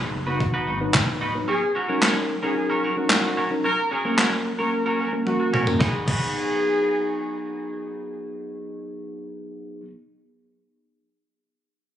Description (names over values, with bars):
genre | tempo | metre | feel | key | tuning
dance-pop | 111 BPM | 4/4 | straight | G# minor | A4 = 435 Hz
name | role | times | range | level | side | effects
mellow tine electric piano | accompaniment | 0.0-9.8 s | F#3 to B4 | -27 LUFS | left 1 dB | sidechain pumping
twelve-string electric guitar | riff | 0.0-9.9 s | C#4 to B4 | -28 LUFS | right 2 dB | lush chorus
warm sub bass | bass | 0.0-1.4 s | D1 to G#1 | -30 LUFS | equal | sidechain pumping
downlifter | sound effects | 0.1-1.5 s | none | -44 LUFS | equal | none
warm horn section | melody | 0.3-7.4 s | F#4 to A#4 | -27 LUFS | equal | sidechain pumping, tape echo
gated 80s digital drum machine | drums | 0.4-6.2 s | crash cymbal, handclaps, kick drum, snare drum, toms | -23 LUFS | equal | gated reverb, gated reverb snare, overdrive
room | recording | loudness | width
light reverb, digital ambience | recorded on a phone in the room, club reverb, compression, nothing above 10.6 kHz | -20 LUFS | side -10 dB against mid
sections
0.0-5.8 A section; 5.8-10.1 B section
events
drum fill 5.3-5.8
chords
0.0 B; 1.5 D#m7; 3.6 F#; 5.8 G#m7